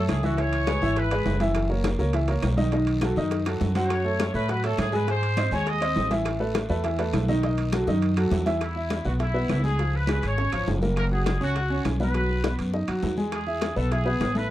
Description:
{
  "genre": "latin, salsa",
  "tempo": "204 BPM",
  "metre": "4/4",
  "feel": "straight",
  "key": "E major",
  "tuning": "A4 = 441 Hz",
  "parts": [
    { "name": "clear upright piano", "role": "accompaniment", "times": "0.0-14.5 s", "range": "D#3 to G#5", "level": "-27 LUFS", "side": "equal", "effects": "none" },
    { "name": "upright bass", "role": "bass", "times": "0.0-14.5 s", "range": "F#1 to A2", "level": "-26 LUFS", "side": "equal", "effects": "none" },
    { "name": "bright trumpet section", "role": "melody", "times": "0.1-1.4, 3.8-6.1, 8.6-14.5 s", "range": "E4 to D#5", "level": "-30 LUFS", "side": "equal", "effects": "none" },
    { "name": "bongos", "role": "percussion", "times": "0.1-14.4 s", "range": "none", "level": "-35 LUFS", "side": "left 8 dB", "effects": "none" },
    { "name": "claves", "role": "percussion", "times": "0.1-14.4 s", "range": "none", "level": "-42 LUFS", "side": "left 7 dB", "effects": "none" },
    { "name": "congas", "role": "percussion", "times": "0.1-14.5 s", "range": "none", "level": "-32 LUFS", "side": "left 2 dB", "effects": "none" },
    { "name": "guiro", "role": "percussion", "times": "0.1-14.5 s", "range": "none", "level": "-45 LUFS", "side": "left 4 dB", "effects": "none" },
    { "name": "timbales", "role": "percussion", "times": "0.1-14.4 s", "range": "none", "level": "-36 LUFS", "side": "right 7 dB", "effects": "none" }
  ],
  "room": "little or no reverb",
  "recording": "dry, close 1970s-style studio recording",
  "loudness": "-22 LUFS",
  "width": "side -14 dB against mid",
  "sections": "0.0-8.6 A section; 8.6-14.5 B section",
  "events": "drum fill 3.3-3.9, 7.9-8.6",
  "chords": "0.4 C#m7; 1.6 F#7; 2.7 B7; 3.9 F#m; 5.1 G#; 6.3 Asus2; 7.4 B7; 8.6 E6; 9.8 C#; 11.0 F#; 12.1 B6; 13.3 E",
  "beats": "0.08 | 0.38 0.67 0.96 1.26 | 1.55 1.85 2.14 2.43 | 2.73 3.02 3.31 3.61 | 3.90 4.20 4.49 4.79 | 5.08 5.37 5.67 5.96 | 6.25 6.55 6.84 7.14 | 7.43 7.72 8.02 8.31 | 8.61 8.90 9.20 9.49 | 9.79 10.08 10.38 10.67 | 10.97 11.26 11.56 11.85 | 12.15 12.44 12.73 13.03 | 13.32 13.62 13.91 14.21 | 14.50"
}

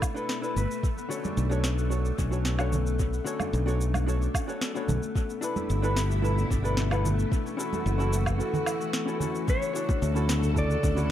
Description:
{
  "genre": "sunset chillout",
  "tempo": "111 BPM",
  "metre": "4/4",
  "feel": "straight",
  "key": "B minor",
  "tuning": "A4 = 440 Hz",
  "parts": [
    { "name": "mellow electric guitar", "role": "melody", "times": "0.0-0.8, 9.5-11.1 s", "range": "A4 to D5", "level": "-34 LUFS", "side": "left 1 dB", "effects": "analog delay" },
    { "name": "hollow-body jazz guitar", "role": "accompaniment", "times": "0.0-11.1 s", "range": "C#3 to C#5", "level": "-33 LUFS", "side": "moving between left 3 dB and right 4 dB", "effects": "auto-pan, analog delay" },
    { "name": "soft string machine", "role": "sustained chords", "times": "0.0-11.1 s", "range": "B2 to A4", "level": "-35 LUFS", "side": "equal", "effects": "ensemble chorus" },
    { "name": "electronic kick drum", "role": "drums", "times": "0.0-10.9 s", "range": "none", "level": "-28 LUFS", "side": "equal", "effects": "none" },
    { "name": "electronic woodblock, shaker and snare drum", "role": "drums", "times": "0.0-11.1 s", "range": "none", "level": "-34 LUFS", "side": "right 1 dB", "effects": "dub echo" },
    { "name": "modern bright fingered electric bass", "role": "bass", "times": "0.6-11.1 s", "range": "F#1 to D2", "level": "-26 LUFS", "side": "equal", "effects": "tube saturation" },
    { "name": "concert harp", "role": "arpeggios", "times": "0.8-11.1 s", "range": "A3 to A4", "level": "-35 LUFS", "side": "left 6 dB", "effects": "analog delay" },
    { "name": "congas and bongos", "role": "percussion", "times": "1.2-10.9 s", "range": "none", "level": "-35 LUFS", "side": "right 3 dB", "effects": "none" }
  ],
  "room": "moderate spring reverb, RT60 1.2 s, digital ambience",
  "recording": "echo-heavy mix",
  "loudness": "-25 LUFS",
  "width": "side -11 dB against mid",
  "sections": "0.0-9.5 A section; 9.5-11.1 B section",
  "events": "kick drops out 8.4-9.5",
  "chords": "0.0 G69 (rootless); 0.8 Bm9; 5.2 G69; 7.3 F#m7; 9.5 Dmaj7",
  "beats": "0.29 | 0.83 1.37 1.91 2.46 | 3.00 3.54 4.08 4.62 | 5.16 5.70 6.24 6.78 | 7.32 7.86 8.40 8.94 | 9.48 10.02 10.56 11.10"
}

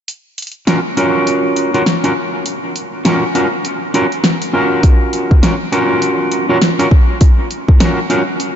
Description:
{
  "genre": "glitch hop",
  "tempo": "101 BPM",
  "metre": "4/4",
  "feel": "swing 60% on 16ths",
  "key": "unclear",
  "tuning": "A4 = 443 Hz",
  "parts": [
    { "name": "pop drum kit", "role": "drums", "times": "0.1-8.5 s", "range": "hi-hat, snare drum", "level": "-19 LUFS", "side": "equal", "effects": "none" },
    { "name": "electric guitar at the edge of break-up", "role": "stabs", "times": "0.7-8.2 s", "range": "Db4 to Bb4", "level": "-14 LUFS", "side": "equal", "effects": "sidechain pumping, low-pass filter, tape echo" },
    { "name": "electronic kick drum", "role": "drums", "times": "4.8-7.8 s", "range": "none", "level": "-9 LUFS", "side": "equal", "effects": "none" }
  ],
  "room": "moderate huge ambient reverb, RT60 4.7 s",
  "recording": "dreamy mix soaked in reverb, nothing above 7.6 kHz",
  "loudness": "-11 LUFS",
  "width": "side -9 dB against mid",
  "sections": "0.1-8.6 A section",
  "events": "none",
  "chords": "0.1 Dbadd11",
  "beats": "| 0.08 0.68 1.27 1.86 | 2.46 3.05 3.65 4.24 | 4.83 5.43 6.02 6.62 | 7.21 7.81 8.40"
}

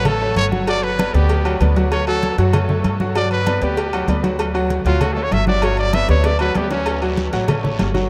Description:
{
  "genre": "latin, salsa",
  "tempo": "194 BPM",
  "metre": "4/4",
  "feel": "straight",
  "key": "D major",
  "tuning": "A4 = 440 Hz",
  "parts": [
    { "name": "clear trumpet", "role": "melody", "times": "0.0-7.0 s", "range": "C#4 to E5", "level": "-25 LUFS", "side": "equal", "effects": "none" },
    { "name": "bright grand piano", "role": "accompaniment", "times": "0.0-8.1 s", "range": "F#3 to F#5", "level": "-24 LUFS", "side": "equal", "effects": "none" },
    { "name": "upright bass", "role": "bass", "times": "0.0-8.1 s", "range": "G1 to G2", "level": "-22 LUFS", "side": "equal", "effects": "none" },
    { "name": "agogo bells and timbales", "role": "percussion", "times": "0.1-7.9 s", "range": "none", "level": "-31 LUFS", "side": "equal", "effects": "none" },
    { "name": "congas", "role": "percussion", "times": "0.1-8.1 s", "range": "none", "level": "-26 LUFS", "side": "equal", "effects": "none" },
    { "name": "cowbell and bongos", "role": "percussion", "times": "0.1-7.9 s", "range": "none", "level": "-31 LUFS", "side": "equal", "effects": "none" },
    { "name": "guiro", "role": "percussion", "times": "6.9-8.1 s", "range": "none", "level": "-38 LUFS", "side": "equal", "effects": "none" }
  ],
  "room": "moderate huge ambient reverb, RT60 8.3 s",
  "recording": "in a vast, echoing space",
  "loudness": "-18 LUFS",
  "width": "mono",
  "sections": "0.0-8.1 A section",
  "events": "trumpet solo 0.0-8.1; drum fill 6.1-6.9",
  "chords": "0.0 Dmaj7 (rootless); 0.7 Gmaj7; 1.9 Dmaj7; 3.2 Gmaj7; 4.4 Dmaj7; 5.6 Gmaj7; 6.9 Dmaj7",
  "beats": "0.06 0.37 | 0.68 0.99 1.30 1.61 | 1.92 2.23 2.54 2.85 | 3.15 3.46 3.77 4.08 | 4.39 4.70 5.01 5.32 | 5.63 5.94 6.25 6.56 | 6.87 7.17 7.48 7.79"
}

